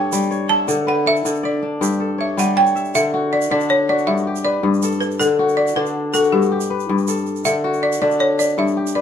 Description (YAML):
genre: west african traditional, West African string and xylophone music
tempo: 106 BPM (dotted quarters)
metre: 12/8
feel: straight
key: D major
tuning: A4 = 441 Hz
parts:
  - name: balafon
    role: melody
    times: 0.0-9.0 s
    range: G4 to A5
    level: -18 LUFS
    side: equal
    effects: none
  - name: kora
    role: arpeggios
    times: 0.0-9.0 s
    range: G2 to E5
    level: -19 LUFS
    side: left 2 dB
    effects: none
  - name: egg shaker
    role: percussion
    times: 0.1-9.0 s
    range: none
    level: -30 LUFS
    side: right 8 dB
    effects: none
room: moderate studio reverb, RT60 0.6 s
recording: minimal, uncompressed stereo recording, lossy compression artefacts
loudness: -16 LUFS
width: side -8 dB against mid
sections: 0.0-2.9 A section; 2.9-9.0 B section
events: balafon solo 0.0-2.9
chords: 0.0 G5; 0.7 D5; 1.8 G5; 2.9 D; 4.1 G; 5.2 D; 6.3 G; 7.5 D